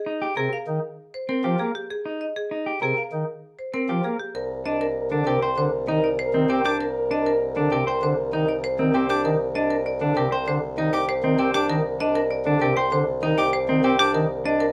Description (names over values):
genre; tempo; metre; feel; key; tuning
classical, minimalist pattern music; 98 BPM; 4/4; straight; F minor, C minor from 4.4 s; A4 = 440 Hz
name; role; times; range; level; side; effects
marimba with hard mallets; melody; 0.0-14.7 s; G4 to G5; -30 LUFS; equal; none
clean electric guitar; arpeggios; 0.1-14.7 s; C4 to C5; -27 LUFS; equal; none
pipe organ, cornet; accompaniment; 0.4-14.3 s; C3 to C4; -28 LUFS; equal; none
clear French horn; second line; 4.3-9.0 s; Bb4; -31 LUFS; equal; none
clear bassoon; bass; 4.4-14.7 s; C2; -31 LUFS; equal; none
clear violin; arpeggios; 6.6-14.1 s; D6; -28 LUFS; equal; none
room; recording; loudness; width
moderate studio reverb, RT60 0.8 s; none; -23 LUFS; mono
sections
0.0-4.4 A section; 4.4-14.7 B section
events
none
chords
0.0 Fm9; 4.4 Cm7